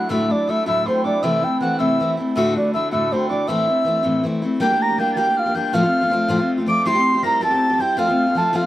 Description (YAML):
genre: celtic folk, Celtic jig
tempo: 107 BPM (dotted quarters)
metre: 6/8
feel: straight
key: A dorian, G dorian from 4.6 s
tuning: A4 = 438 Hz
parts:
  - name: mellow baroque flute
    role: melody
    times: 0.0-8.7 s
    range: C5 to D6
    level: -20 LUFS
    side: right 1 dB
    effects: none
  - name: hammered dulcimer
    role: second line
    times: 0.0-8.7 s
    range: C4 to D5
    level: -29 LUFS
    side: right 9 dB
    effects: slapback echo
  - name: tin whistle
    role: second line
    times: 0.0-8.7 s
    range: C6 to D7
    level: -26 LUFS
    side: left 5 dB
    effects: none
  - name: picked steel-string acoustic guitar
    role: accompaniment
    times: 0.0-8.7 s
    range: D2 to G4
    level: -21 LUFS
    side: left 2 dB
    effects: none
room: little or no reverb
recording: recorded outdoors, with no room sound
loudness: -17 LUFS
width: side -14 dB against mid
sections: 0.0-4.6 A section; 4.6-8.7 B section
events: none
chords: 0.0 Dadd9; 1.2 Am/C; 2.4 D; 3.5 Am; 4.6 Gm; 5.7 F/A; 6.9 C/G; 8.0 F